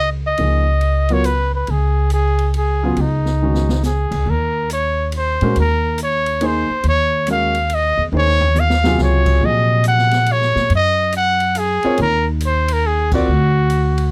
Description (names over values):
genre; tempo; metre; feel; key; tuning
modal jazz; 140 BPM; 3/4; swing 65% on 8ths; Eb dorian from 4.3 s; A4 = 440 Hz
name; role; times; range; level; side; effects
warm trumpet; melody; 0.0-14.1 s; Eb4 to Gb5; -20 LUFS; equal; none
upright bass; bass; 0.0-14.1 s; Db2 to Bb2; -20 LUFS; equal; none
warm concert grand piano; accompaniment; 0.4-13.3 s; C3 to D5; -24 LUFS; equal; none
open jazz drum kit; drums; 0.4-14.0 s; crash cymbal, hi-hat, kick drum, ride cymbal, snare drum, toms; -31 LUFS; equal; none
room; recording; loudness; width
little or no reverb; close, detailed microphones; -17 LUFS; mono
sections
0.0-4.3 A section; 4.3-14.1 B section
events
drum fill 3.4-3.8, 8.1-9.0; band accent 13.1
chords
0.0 Dbsus2; 4.3 Ebm9; 13.3 D